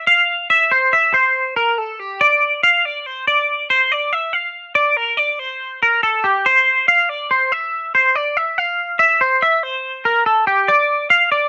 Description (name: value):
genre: rock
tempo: 141 BPM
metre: 5/4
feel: straight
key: unclear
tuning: A4 = 440 Hz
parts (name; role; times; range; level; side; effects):
- twangy electric guitar; solo; 0.0-11.5 s; G4 to F5; -16 LUFS; equal; analog chorus
room: light reverb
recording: none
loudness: -16 LUFS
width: mono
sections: 0.0-11.5 A section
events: none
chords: none